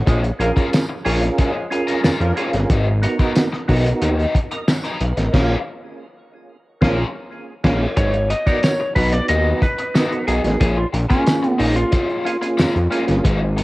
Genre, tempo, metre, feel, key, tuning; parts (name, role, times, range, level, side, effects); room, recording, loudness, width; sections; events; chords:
funk; 91 BPM; 4/4; straight; A4 = 440 Hz
percussive tonewheel organ; stabs; 0.0-13.3 s; A#3 to G#5; -24 LUFS; right 2 dB; chorus vibrato, slow rotary speaker, tape echo
fat analog bass; bass; 0.0-13.6 s; G1 to E#2; -19 LUFS; equal
mellow horn section; second line; 0.1-7.8 s; E#3 to C#5; -29 LUFS; equal
overdriven semi-hollow guitar; accompaniment; 0.1-13.6 s; F#3 to A#4; -26 LUFS; left 3 dB; wah
cloth-damped thuddy drum kit; drums; 0.1-13.6 s; crash cymbal, hi-hat, kick drum, snare drum; -20 LUFS; equal
tambourine; percussion; 0.7-12.7 s; -37 LUFS; left 3 dB
lightly driven lead guitar; melody; 8.0-13.4 s; C#4 to D#5; -21 LUFS; equal
light reverb; home recording on cassette; -16 LUFS; side -20 dB against mid
0.0-8.0 A section; 8.0-13.6 B section
band accent 5.3-8.0; lead electric guitar solo 8.0-13.6
0.1 A#m7; 2.7 G#m9; 5.3 A#m7; 8.0 G#m9; 10.6 A#m7